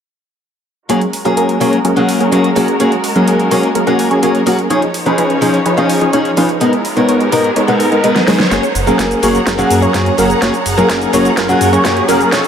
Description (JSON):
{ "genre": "EDM, festival progressive house", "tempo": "126 BPM", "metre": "4/4", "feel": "straight", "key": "F# major", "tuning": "A4 = 440 Hz", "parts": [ { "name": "picked acoustic archtop guitar", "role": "accompaniment", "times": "0.9-12.4 s", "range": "G#2 to A#4", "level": "-16 LUFS", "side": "left 3 dB", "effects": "sidechain pumping, dub echo" }, { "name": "rich studio string section", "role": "sustained chords", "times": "0.9-12.5 s", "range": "E#3 to D#6", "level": "-21 LUFS", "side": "right 1 dB", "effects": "sidechain pumping, low-pass filter" }, { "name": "supersaw stab", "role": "riff", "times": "0.9-12.5 s", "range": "E#3 to F#5", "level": "-14 LUFS", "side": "right 1 dB", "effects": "sidechain pumping, low-pass filter, dub echo" }, { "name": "big-room dance drum kit", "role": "drums", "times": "0.9-12.5 s", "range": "cabasa, hi-hat, snare drum", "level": "-20 LUFS", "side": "right 1 dB", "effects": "overdrive, high-pass filter on hats, high-pass filter on snare, high-pass filter on perc" }, { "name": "riser", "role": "sound effects", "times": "6.2-12.5 s", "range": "none", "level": "-22 LUFS", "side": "equal", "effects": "none" }, { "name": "wide unison lead", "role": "arpeggios", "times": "8.5-12.5 s", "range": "A#4 to F#5", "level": "-17 LUFS", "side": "right 1 dB", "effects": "sidechain pumping, dub echo" }, { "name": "wide detuned saw bass", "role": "bass", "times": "8.5-12.4 s", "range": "E#1 to F#2", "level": "-21 LUFS", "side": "right 1 dB", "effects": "chorus, tube saturation, sidechain pumping" }, { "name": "electronic kick drum", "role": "drums", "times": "8.5-12.4 s", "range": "none", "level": "-21 LUFS", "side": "right 1 dB", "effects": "overdrive, high-pass filter on kick" } ], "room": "moderate huge ambient reverb, RT60 4.7 s", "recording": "high-pass filter", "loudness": "-10 LUFS", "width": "side -8 dB against mid", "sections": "0.9-8.5 A section; 8.5-12.5 B section", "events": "riser 6.2-8.5, 8.5-12.5; drum fill 8.2-8.5, 8.5-12.5; build-up 8.5-12.5; filter sweep on supersaw synth 8.5-12.5; filter sweep on analog synth lead 8.5-12.5", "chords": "0.9 F#add9; 4.7 C#add9/E#; 6.6 G#madd9; 8.5 F#add9" }